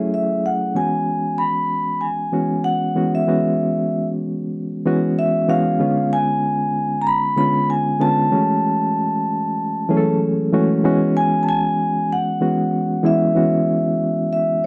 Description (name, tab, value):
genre	soul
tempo	95 BPM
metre	4/4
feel	swing 58% on 16ths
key	E major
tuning	A4 = 440 Hz
part	vibraphone with medium mallets	melody	0.0-14.7 s	E5 to B5	-23 LUFS	equal	none
part	barky reed electric piano	accompaniment	0.0-14.7 s	D3 to A4	-21 LUFS	equal	overdrive, fast tremolo
room	light reverb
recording	dry, close 1970s-style studio recording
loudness	-19 LUFS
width	mono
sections	0.8-10.8 A section; 10.8-14.7 B section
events	none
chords	0.0 F#m7; 0.8 E6; 5.8 C#7b9; 8.3 F#m7; 10.8 E6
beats	0.12 | 0.76 1.39 2.02 2.65 | 3.28 3.91 4.54 5.17 | 5.80 6.43 7.06 7.69 | 8.32 8.95 9.58 10.21 | 10.84 11.47 12.10 12.73 | 13.36 13.99 14.62